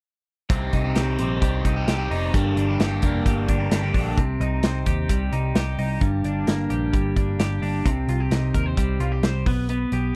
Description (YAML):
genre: jangly indie pop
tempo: 131 BPM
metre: 4/4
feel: straight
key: C minor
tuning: A4 = 440 Hz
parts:
  - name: crunchy overdriven guitar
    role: accompaniment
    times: 0.5-4.2 s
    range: G2 to G4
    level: -31 LUFS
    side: equal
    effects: phaser
  - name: twelve-string electric guitar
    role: arpeggios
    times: 0.5-10.2 s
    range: G2 to C5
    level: -28 LUFS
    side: equal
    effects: none
  - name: vintage muted picked electric bass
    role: bass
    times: 0.5-10.1 s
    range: F1 to Eb2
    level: -27 LUFS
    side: equal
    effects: none
  - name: modern studio drum kit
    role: drums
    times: 0.5-10.0 s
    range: hi-hat, kick drum, snare drum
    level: -25 LUFS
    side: equal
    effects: none
room: small room ambience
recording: dry, close 1970s-style studio recording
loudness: -23 LUFS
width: mono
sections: 0.5-4.2 A section; 4.2-10.2 B section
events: none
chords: 0.5 Cm; 2.3 Gm; 4.2 Cm; 6.0 Gm; 7.9 Cm; 9.5 G/B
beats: | 0.50 0.96 1.42 1.88 | 2.34 2.80 3.26 3.72 | 4.18 4.64 5.10 5.56 | 6.02 6.48 6.93 7.39 | 7.85 8.31 8.77 9.23 | 9.69 10.15